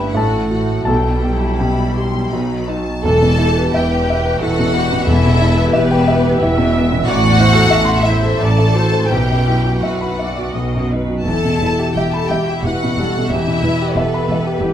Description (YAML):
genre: classical, romantic movement for piano and orchestra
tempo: 82-94 BPM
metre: 3/4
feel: rubato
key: E minor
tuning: A4 = 438 Hz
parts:
  - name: clear symphonic violin section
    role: melody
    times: 0.0-14.7 s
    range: B4 to C6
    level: -23 LUFS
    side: left 2 dB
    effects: none
  - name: warm concert grand piano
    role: melody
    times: 0.0-14.7 s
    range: A1 to C6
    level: -17 LUFS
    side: equal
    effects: none
  - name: clear symphonic violin section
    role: second line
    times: 0.0-14.7 s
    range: B3 to A4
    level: -22 LUFS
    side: left 2 dB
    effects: none
  - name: clear symphonic viola section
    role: accompaniment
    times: 0.0-14.7 s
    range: F#3 to E5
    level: -25 LUFS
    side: right 2 dB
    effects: none
  - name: rich symphonic cello section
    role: bass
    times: 0.0-14.7 s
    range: E2 to B2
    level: -22 LUFS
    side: right 2 dB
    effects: none
  - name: rich symphonic double bass section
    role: bass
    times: 0.0-14.7 s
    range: E1 to B1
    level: -22 LUFS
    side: right 2 dB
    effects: none
  - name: timpani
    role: percussion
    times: 0.9-6.0, 13.3-14.2 s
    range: E2 to B2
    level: -23 LUFS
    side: left 2 dB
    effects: none
room: light reverb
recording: close, detailed microphones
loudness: -13 LUFS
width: side -10 dB against mid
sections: 0.0-3.0 A section; 3.0-14.7 B section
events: none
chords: 0.2 F#m/A; 0.9 Em/B; 2.3 B; 3.0 Em; 7.1 Am; 9.1 Bsus4; 10.5 B; 11.2 Em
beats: 0.17 | 0.88 1.60 2.32 | 3.04 3.74 4.41 | 5.07 5.74 6.41 | 7.07 7.71 8.41 | 9.11 9.82 10.53 | 11.25 11.96 12.64 | 13.30 13.96 14.61